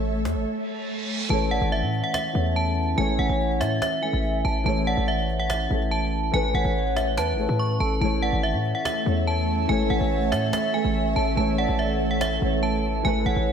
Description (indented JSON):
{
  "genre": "hip hop, trap",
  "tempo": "143 BPM",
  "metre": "4/4",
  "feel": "half-time",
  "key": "A major",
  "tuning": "A4 = 437 Hz",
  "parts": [
    { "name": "ethereal airy pad", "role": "sustained chords", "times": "0.0-1.3, 8.5-13.5 s", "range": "A3 to E5", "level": "-30 LUFS", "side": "right 2 dB", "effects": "ensemble chorus, built-in reverb" },
    { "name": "hard-hitting 808-style bass", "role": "bass", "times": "0.0-13.5 s", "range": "G#1 to A2", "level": "-25 LUFS", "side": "equal", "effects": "none" },
    { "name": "cajon", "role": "drums", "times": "0.0-13.5 s", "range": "none", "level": "-37 LUFS", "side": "equal", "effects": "none" },
    { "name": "reverse cymbal", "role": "sound effects", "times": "0.6-1.3 s", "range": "none", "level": "-34 LUFS", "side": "right 4 dB", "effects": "none" },
    { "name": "metallic FM bell", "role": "melody", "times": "1.3-13.5 s", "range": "E5 to C#6", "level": "-26 LUFS", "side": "right 2 dB", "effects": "chorus, ping-pong delay" },
    { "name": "dark concert grand piano", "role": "accompaniment", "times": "1.3-13.5 s", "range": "E3 to E5", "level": "-27 LUFS", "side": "left 2 dB", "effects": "lush chorus" },
    { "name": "hollow clarinet-like synth lead", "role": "second line", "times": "1.5-13.5 s", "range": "A4 to E5", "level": "-32 LUFS", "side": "right 1 dB", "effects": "chorus, ping-pong delay" }
  ],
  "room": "wet lush hall reverb, RT60 1.7 s, digital ambience",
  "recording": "dreamy mix soaked in reverb",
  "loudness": "-21 LUFS",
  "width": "side -7 dB against mid",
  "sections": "0.0-1.3 A section; 1.3-13.5 B section",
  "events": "break 0.5-1.3; reverse cymbal 0.6-1.3",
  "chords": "0.0 A"
}